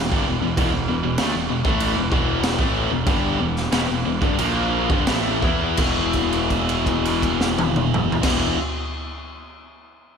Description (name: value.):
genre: hard rock.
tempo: 83-98 BPM.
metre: 4/4.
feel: straight.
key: E minor.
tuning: A4 = 440 Hz.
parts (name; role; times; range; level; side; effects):
biting overdriven guitar; riff; 0.0-8.6 s; E2 to E4; -26 LUFS; left 10 dB; none.
crunchy overdriven guitar; riff; 0.0-8.6 s; E2 to E4; -27 LUFS; left 1 dB; spring reverb, slapback echo.
scooped high-gain guitar; riff; 0.0-8.6 s; E2 to E4; -26 LUFS; right 11 dB; distortion, slapback echo.
fuzz picked electric bass; bass; 0.0-8.5 s; E1 to E2; -27 LUFS; right 1 dB; overdrive.
raw garage drum kit; drums; 0.1-8.4 s; crash cymbal, kick drum, snare drum, toms; -23 LUFS; equal; none.
room: moderate lush hall reverb, RT60 2.7 s.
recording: big arena sound.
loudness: -18 LUFS.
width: side -6 dB against mid.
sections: 0.0-5.8 A section; 5.8-8.7 B section.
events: slowing down 0.6-5.8; held note 5.8-8.2.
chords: 0.0 Em; 5.8 E5.